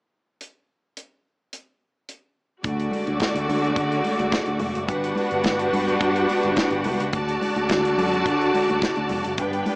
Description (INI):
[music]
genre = disco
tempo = 107 BPM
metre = 4/4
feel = straight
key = D major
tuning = A4 = 441 Hz
[part]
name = modern studio drum kit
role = drums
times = 0.4-9.8 s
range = hi-hat, kick drum, snare drum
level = -28 LUFS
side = equal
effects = none
[part]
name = bright studio string section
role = second line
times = 2.6-9.8 s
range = A3 to A5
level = -24 LUFS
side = equal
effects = none
[part]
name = clear studio string section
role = sustained chords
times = 2.6-9.8 s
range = C#3 to G4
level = -26 LUFS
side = equal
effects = none
[part]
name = picked electric bass with an envelope filter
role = bass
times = 2.6-9.6 s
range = F1 to D3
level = -28 LUFS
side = equal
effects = none
[part]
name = congas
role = percussion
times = 2.6-9.8 s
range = none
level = -32 LUFS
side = equal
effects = none
[sound]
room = light reverb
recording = small speaker sound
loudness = -20 LUFS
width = side -29 dB against mid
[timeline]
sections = 0.4-2.6 A section; 2.6-9.8 B section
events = none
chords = 0.4 N.C.; 2.6 Dmaj7; 4.9 Gmaj7; 7.1 Dmaj7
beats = | 0.40 0.96 1.52 2.08 | 2.64 3.20 3.76 4.33 | 4.89 5.45 6.01 6.57 | 7.13 7.70 8.26 8.82 | 9.38